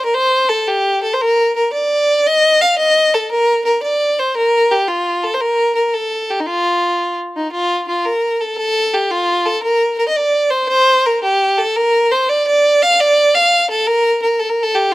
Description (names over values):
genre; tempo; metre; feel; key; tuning
celtic folk; 114 BPM (dotted quarters); 6/8; straight; F mixolydian; A4 = 440 Hz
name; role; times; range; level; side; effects
rich fiddle; solo; 0.0-14.9 s; Eb4 to F5; -13 LUFS; equal; none
room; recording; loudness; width
little or no reverb; recorded outdoors, with no room sound; -13 LUFS; side -18 dB against mid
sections
0.0-7.5 A section; 7.5-14.9 A section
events
none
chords
none